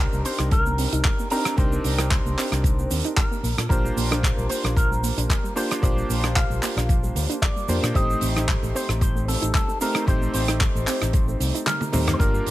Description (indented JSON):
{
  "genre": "nu-disco, nu disco",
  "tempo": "113 BPM",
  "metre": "4/4",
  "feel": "swing 54% on 16ths",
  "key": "unclear",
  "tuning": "A4 = 440 Hz",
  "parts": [
    { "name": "electric guitar with an envelope filter", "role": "melody", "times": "0.0-12.5 s", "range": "A4 to F5", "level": "-30 LUFS", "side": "equal", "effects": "phaser, tape echo" },
    { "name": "clear electric grand piano", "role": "accompaniment", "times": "0.0-12.5 s", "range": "A3 to C5", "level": "-29 LUFS", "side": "equal", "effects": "sidechain pumping" },
    { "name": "soft round pluck", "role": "arpeggios", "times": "0.0-12.5 s", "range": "F3 to Eb4", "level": "-32 LUFS", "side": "right 3 dB", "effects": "chorus, sidechain pumping, tape echo" },
    { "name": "fingered electric bass with an envelope filter", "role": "bass", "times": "0.0-12.5 s", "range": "G1 to Bb2", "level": "-25 LUFS", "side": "equal", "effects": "sidechain pumping" },
    { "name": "damped 70s drum kit", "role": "drums", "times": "0.1-12.5 s", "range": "handclaps, hi-hat, rim click, shaker, toms", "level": "-27 LUFS", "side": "right 1 dB", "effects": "none" },
    { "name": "electronic kick drum", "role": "drums", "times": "0.5-12.3 s", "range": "none", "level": "-22 LUFS", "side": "equal", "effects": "none" }
  ],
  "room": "little or no reverb",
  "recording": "none",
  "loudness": "-20 LUFS",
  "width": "side -15 dB against mid",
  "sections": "0.0-12.5 A section",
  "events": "kick drops out 11.7-12.2; drum fill 11.7-12.2",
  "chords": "0.0 Cm7; 3.4 Bb6; 8.0 Am7b5"
}